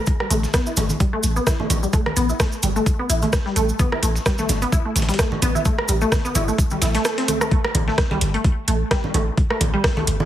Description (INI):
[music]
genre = minimal techno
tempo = 129 BPM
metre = 4/4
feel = swing 56% on 16ths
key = unclear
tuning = A4 = 445 Hz
[part]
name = dusty soul sampler-style drum kit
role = drums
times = 0.1-10.2 s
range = hi-hat, snare drum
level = -32 LUFS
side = left 1 dB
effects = high-pass filter on snare, sidechain pumping on hats, high-pass filter on hats
[part]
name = electronic kick drum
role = drums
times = 0.1-9.9 s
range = none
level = -20 LUFS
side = equal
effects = overdrive
[part]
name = cabasa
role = percussion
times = 0.1-7.5 s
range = none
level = -29 LUFS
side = right 2 dB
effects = none
[part]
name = resonant blip pluck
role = riff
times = 0.2-10.0 s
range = G3 to A4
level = -24 LUFS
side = equal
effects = lush chorus, sidechain pumping, ping-pong delay
[part]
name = electronic rim click and congas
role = percussion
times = 0.2-10.3 s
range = none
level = -26 LUFS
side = right 1 dB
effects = digital delay
[part]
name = punchy sub bass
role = bass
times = 0.3-10.2 s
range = G1 to A1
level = -21 LUFS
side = equal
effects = tube saturation, sidechain pumping
[part]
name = garage drum kit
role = drums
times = 0.3-10.2 s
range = hi-hat, rim click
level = -24 LUFS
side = right 1 dB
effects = overdrive
[part]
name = swell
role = sound effects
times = 6.7-7.5 s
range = none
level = -30 LUFS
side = right 5 dB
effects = none
[sound]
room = light reverb, digital ambience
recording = heavily compressed radio sound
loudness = -18 LUFS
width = side -12 dB against mid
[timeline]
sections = 0.0-7.5 A section; 7.5-10.3 B section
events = filter sweep on synth pluck 0.0-7.5; swell 6.7-7.5; kick drops out 7.0-7.5; drop 7.5-10.3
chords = 0.0 A7(no3); 7.5 Gsus2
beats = | 0.07 0.54 1.00 1.47 | 1.93 2.40 2.86 3.33 | 3.79 4.26 4.72 5.19 | 5.65 6.12 6.58 7.05 | 7.51 7.98 8.45 8.91 | 9.38 9.84